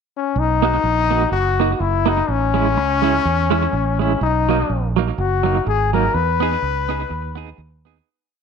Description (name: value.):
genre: ska.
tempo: 124 BPM.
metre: 4/4.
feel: swing 56% on 8ths.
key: B major.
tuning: A4 = 441 Hz.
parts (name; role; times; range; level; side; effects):
brilliant trombone; melody; 0.2-7.9 s; C#4 to B4; -19 LUFS; left 8 dB; none.
fingered electric bass; bass; 0.4-8.0 s; F#1 to E2; -21 LUFS; right 2 dB; none.
semi-hollow electric guitar; accompaniment; 0.6-8.0 s; F#3 to G#4; -22 LUFS; right 15 dB; tremolo, slapback echo.
room: wet spring reverb, RT60 1.2 s, studio ambience.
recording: 1960s-style stereo with parts hard left and right.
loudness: -16 LUFS.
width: side -6 dB against mid.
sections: 0.0-0.4 pickup bar; 0.4-8.1 head.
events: fade-out 6.1-8.1.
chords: 0.4 Bmaj7; 2.3 Amaj7; 4.2 Bmaj7; 6.1 Emaj7.